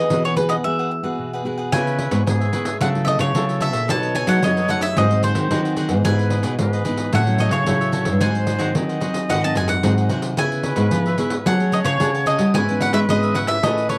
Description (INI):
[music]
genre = samba and choro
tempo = 111 BPM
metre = 4/4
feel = straight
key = C# minor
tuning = A4 = 440 Hz
[part]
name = bowl-back mandolin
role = melody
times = 0.0-14.0 s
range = B4 to A5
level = -25 LUFS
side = equal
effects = none
[part]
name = cavaquinho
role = accompaniment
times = 0.0-14.0 s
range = D#4 to A5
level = -33 LUFS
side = equal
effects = none
[part]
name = nylon-string guitar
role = accompaniment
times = 0.0-14.0 s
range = F#2 to G#4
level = -28 LUFS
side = equal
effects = none
[part]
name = nylon-string guitar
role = bass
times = 0.0-14.0 s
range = F#2 to A3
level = -23 LUFS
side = equal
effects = none
[part]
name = pandeiro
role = percussion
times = 0.1-14.0 s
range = none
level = -28 LUFS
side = equal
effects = none
[part]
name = bright concert flute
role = second line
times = 1.7-14.0 s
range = G#4 to D#5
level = -30 LUFS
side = equal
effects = none
[sound]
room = light reverb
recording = dry, close 1970s-style studio recording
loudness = -20 LUFS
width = mono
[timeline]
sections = 0.0-1.7 A section; 1.7-14.0 B section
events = break 0.7-1.7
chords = 0.0 Eadd9; 1.7 C#m7; 2.8 F#m7/C#; 3.9 B7; 5.0 G#7; 6.1 Emaj7/G#; 7.1 F#m7/A; 8.2 G#7; 10.4 C#m7; 11.5 F#madd9; 12.5 C#m7/G#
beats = 0.11 0.65 1.19 | 1.73 2.27 2.81 3.35 | 3.89 4.43 4.97 5.51 | 6.05 6.59 7.13 7.67 | 8.21 8.76 9.30 9.84 | 10.38 10.92 11.46 12.01 | 12.55 13.09 13.63